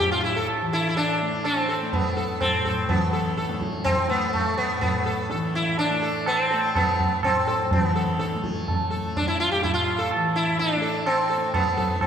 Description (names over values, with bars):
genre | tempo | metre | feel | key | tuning
indian classical, Hindustani | 125 BPM | 5/4 | straight | A raga darbari | A4 = 440 Hz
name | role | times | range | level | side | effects
sitar | melody | 0.0-12.1 s | A3 to A4 | -24 LUFS | equal | none
tanpura | drone | 0.0-12.1 s | A2 to A3 | -30 LUFS | left 2 dB | none
tabla | percussion | 0.0-12.1 s | none | -25 LUFS | right 2 dB | none
room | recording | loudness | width
wet concert hall reverb, RT60 2.1 s | recorded in a church or concert hall | -21 LUFS | side -8 dB against mid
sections
0.0-2.9 A section; 2.9-12.1 B section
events
none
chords
none